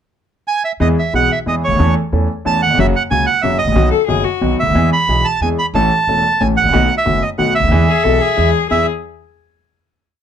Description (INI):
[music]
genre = tango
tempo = 182 BPM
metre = 3/4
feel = rubato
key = E major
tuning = A4 = 440 Hz
[part]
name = bandoneon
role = melody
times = 0.5-8.9 s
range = C#5 to B5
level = -16 LUFS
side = right 4 dB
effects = none
[part]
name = warm concert grand piano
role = accompaniment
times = 0.8-8.8 s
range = E1 to A4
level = -17 LUFS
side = left 1 dB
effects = none
[part]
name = upright bass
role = bass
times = 0.8-8.8 s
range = E1 to E2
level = -19 LUFS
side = right 1 dB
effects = none
[part]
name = warm cello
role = second line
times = 3.9-4.5, 7.9-8.9 s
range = F#4 to A4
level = -17 LUFS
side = left 12 dB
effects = none
[sound]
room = light reverb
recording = close, detailed microphones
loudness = -12 LUFS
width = side -8 dB against mid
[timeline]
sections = 0.0-0.8 pickup bar; 0.8-8.7 A section; 8.7-9.7 final chord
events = none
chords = 0.0 N.C.; 0.8 E; 1.8 A/E; 2.8 F#; 3.8 B; 4.8 E; 5.7 A; 6.7 B7; 7.7 E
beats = 0.14 0.47 | 0.81 1.14 1.47 | 1.80 2.13 2.45 | 2.78 3.11 3.43 | 3.76 4.09 4.42 | 4.75 5.08 5.41 | 5.75 6.08 6.41 | 6.73 7.06 7.39 | 7.71 8.04 8.38 | 8.71